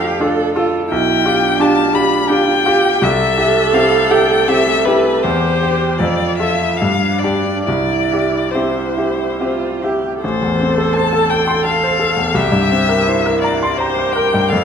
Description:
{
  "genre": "classical, slow romantic movement for piano trio",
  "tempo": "67-86 BPM",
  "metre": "3/4",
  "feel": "rubato",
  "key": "C major, A minor from 10.2 s",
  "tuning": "A4 = 440 Hz",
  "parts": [
    { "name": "rich violin", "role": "melody", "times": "0.0-14.6 s", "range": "B4 to B5", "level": "-18 LUFS", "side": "left 6 dB", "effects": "none" },
    { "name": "warm cello", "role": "second line", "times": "0.0-14.6 s", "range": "D4 to A4", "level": "-20 LUFS", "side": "right 7 dB", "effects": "none" },
    { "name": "bright grand piano", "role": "accompaniment", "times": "0.0-14.6 s", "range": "A1 to C6", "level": "-16 LUFS", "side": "equal", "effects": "none" }
  ],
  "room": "wet recital hall reverb, RT60 1.6 s",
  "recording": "none",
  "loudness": "-13 LUFS",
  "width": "side -7 dB against mid",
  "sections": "0.0-10.2 A section; 10.2-14.6 B section",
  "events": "none",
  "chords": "0.0 Dm/F; 0.9 G7/B; 3.0 C; 5.2 C/E; 6.0 F; 6.8 G5; 7.7 C; 10.2 Am; 12.4 C7",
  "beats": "0.20 | 0.91 1.61 2.31 | 3.04 3.75 4.49 | 5.25 6.00 6.80 | 7.66 8.53 9.40 | 10.23 10.95 11.66 | 12.36 13.07 13.80 | 14.52"
}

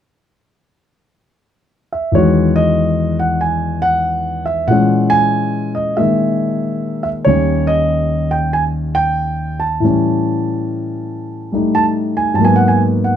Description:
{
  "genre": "solo jazz",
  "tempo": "94 BPM",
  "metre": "4/4",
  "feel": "swing 66% on 8ths",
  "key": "unclear",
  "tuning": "A4 = 439 Hz",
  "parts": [
    { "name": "warm concert grand piano", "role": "solo", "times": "1.9-13.2 s", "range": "D#2 to A5", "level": "-13 LUFS", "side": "equal", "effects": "none" }
  ],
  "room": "light reverb",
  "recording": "close, detailed microphones",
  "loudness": "-13 LUFS",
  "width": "side -9 dB against mid",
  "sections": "0.0-2.1 A section; 2.1-12.4 B section",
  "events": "none",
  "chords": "0.0 N.C.; 2.1 Emaj9; 4.7 A#m7b5; 7.3 D#7; 9.8 A7; 12.4 G#m9",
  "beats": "0.22 0.86 1.50 | 2.14 2.78 3.42 4.06 | 4.70 5.34 5.98 6.62 | 7.26 7.90 8.54 9.19 | 9.83 10.47 11.11 11.75 | 12.39 13.03"
}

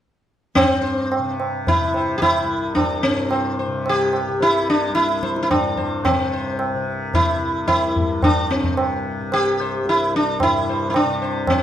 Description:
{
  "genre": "indian classical, Hindustani",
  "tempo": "110 BPM",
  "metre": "5/4",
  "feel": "straight",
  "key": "C raga hamsadhwani",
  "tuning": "A4 = 443 Hz",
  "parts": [
    { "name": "sitar", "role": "melody", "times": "0.6-11.6 s", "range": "C4 to C5", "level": "-19 LUFS", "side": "equal", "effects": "none" },
    { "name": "tanpura", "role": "drone", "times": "0.6-11.6 s", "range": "C2 to C3", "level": "-27 LUFS", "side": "left 2 dB", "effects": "none" },
    { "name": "tabla", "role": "percussion", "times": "0.6-11.6 s", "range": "none", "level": "-23 LUFS", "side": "equal", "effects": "none" }
  ],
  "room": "moderate recital hall reverb, RT60 1.4 s",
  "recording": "none",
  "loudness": "-17 LUFS",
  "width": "side -10 dB against mid",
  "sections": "0.6-11.6 A section",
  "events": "none",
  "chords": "none",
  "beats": "| 0.56 1.11 1.66 2.21 2.76 | 3.31 3.86 4.41 4.96 5.51 | 6.05 6.60 7.15 7.69 8.24 | 8.78 9.32 9.87 10.41 10.95 | 11.49"
}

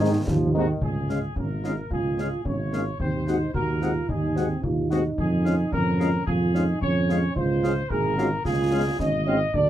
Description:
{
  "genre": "military-style march for wind band",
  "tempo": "110 BPM",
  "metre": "2/4",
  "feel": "straight",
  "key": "Db major",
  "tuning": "A4 = 439 Hz",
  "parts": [
    { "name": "dark trumpet section", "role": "melody", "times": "0.0-9.7 s", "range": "Gb4 to Eb5", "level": "-30 LUFS", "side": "left 1 dB", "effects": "none" },
    { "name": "clear euphonium", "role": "second line", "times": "0.0-9.7 s", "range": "Ab3 to Ab4", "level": "-28 LUFS", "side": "right 4 dB", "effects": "none" },
    { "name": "warm woodwind section", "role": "second line", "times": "0.0-9.4 s", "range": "Ab4 to Gb5", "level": "-35 LUFS", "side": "left 3 dB", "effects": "none" },
    { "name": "mellow French horn section", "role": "accompaniment", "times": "0.0-9.4 s", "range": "Ab3 to Gb4", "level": "-27 LUFS", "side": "left 3 dB", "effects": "none" },
    { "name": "clear trombone section", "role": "sustained chords", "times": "0.0-0.8 s", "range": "Eb3 to F3", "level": "-29 LUFS", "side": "right 1 dB", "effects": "none" },
    { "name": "mellow tuba", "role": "bass", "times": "0.0-9.7 s", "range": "Ab1 to Ab2", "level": "-25 LUFS", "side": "right 1 dB", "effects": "none" },
    { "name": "concert snare drum and concert bass drum", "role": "drums", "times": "0.3-9.7 s", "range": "none", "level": "-31 LUFS", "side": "left 1 dB", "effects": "none" }
  ],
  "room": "moderate booth ambience, RT60 0.2 s",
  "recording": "none",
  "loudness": "-22 LUFS",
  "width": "side -12 dB against mid",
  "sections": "0.8-9.7 A section",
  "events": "none",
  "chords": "0.0 Ab; 0.8 Db; 3.0 Ab7/Eb; 5.2 Db/F; 7.4 Db",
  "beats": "0.27 | 0.82 1.36 | 1.91 2.45 | 3.00 3.54 | 4.09 4.63 | 5.18 5.72 | 6.27 6.81 | 7.36 7.90 | 8.45 8.99 | 9.54"
}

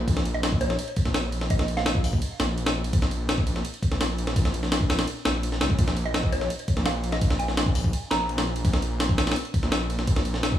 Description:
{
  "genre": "drum and bass, jungle",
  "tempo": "168 BPM",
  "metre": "4/4",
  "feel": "straight",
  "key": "Bb minor",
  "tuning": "A4 = 439 Hz",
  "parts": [
    { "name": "detuned saw bass", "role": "bass", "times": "0.0-10.6 s", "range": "Bb1 to Db2", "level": "-27 LUFS", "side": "equal", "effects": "none" },
    { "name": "breakbeat sampler-style drum kit", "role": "drums", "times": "0.1-10.6 s", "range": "hi-hat, kick drum, ride cymbal, snare drum", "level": "-24 LUFS", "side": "equal", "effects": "none" },
    { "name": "mallet-like synth pluck", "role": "melody", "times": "0.3-2.3, 6.1-8.5 s", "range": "Db5 to Bb5", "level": "-32 LUFS", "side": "right 2 dB", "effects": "chorus, phaser, vintage 12-bit sampler grit, dub echo" }
  ],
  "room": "digital ambience",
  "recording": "small room ambience",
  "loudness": "-22 LUFS",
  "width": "side -11 dB against mid",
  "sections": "0.0-10.6 A section",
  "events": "none",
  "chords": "none",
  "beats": "| 0.07 0.43 0.79 1.15 | 1.50 1.86 2.22 2.58 | 2.93 3.29 3.65 4.00 | 4.36 4.72 5.08 5.43 | 5.79 6.15 6.50 6.86 | 7.22 7.58 7.93 8.29 | 8.65 9.00 9.36 9.72 | 10.07 10.43"
}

